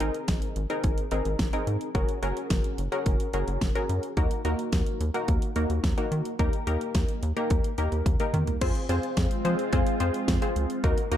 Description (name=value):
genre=synth-pop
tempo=108 BPM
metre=4/4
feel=straight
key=unclear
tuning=A4 = 440 Hz
part: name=funky polysynth comp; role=accompaniment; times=0.0-11.2 s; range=Bb3 to C5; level=-30 LUFS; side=left 1 dB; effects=chorus
part: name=rubbery square bass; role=bass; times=0.0-11.2 s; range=Gb1 to F3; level=-28 LUFS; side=equal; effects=none
part: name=pop drum kit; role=drums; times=0.0-11.2 s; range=crash cymbal, hi-hat, kick drum, snare drum, toms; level=-27 LUFS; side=equal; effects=none
part: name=lush unison pad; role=sustained chords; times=9.1-11.2 s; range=Eb3 to Bb4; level=-31 LUFS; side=right 1 dB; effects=chorus, phaser
room=light reverb, digital ambience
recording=dark, warm production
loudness=-24 LUFS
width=side -11 dB against mid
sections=0.0-8.6 A section; 8.6-11.2 B section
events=drum fill 8.1-8.6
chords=0.0 Abadd9; 1.9 Gbadd9; 4.2 Ebm; 6.4 Eb; 8.6 Fm